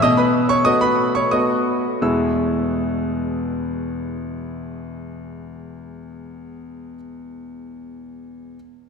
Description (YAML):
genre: classical-period piano sonatina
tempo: 84 BPM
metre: 3/4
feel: straight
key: E major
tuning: A4 = 439 Hz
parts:
  - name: warm concert grand piano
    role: solo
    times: 0.0-8.6 s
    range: E2 to E6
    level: -20 LUFS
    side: equal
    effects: none
room: wet cathedral reverb, RT60 5.4 s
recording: in a vast, echoing space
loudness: -18 LUFS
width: side -6 dB against mid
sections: 0.0-2.0 A section; 2.0-6.3 B section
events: slowing down 0.0-2.0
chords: 0.0 B7; 2.0 E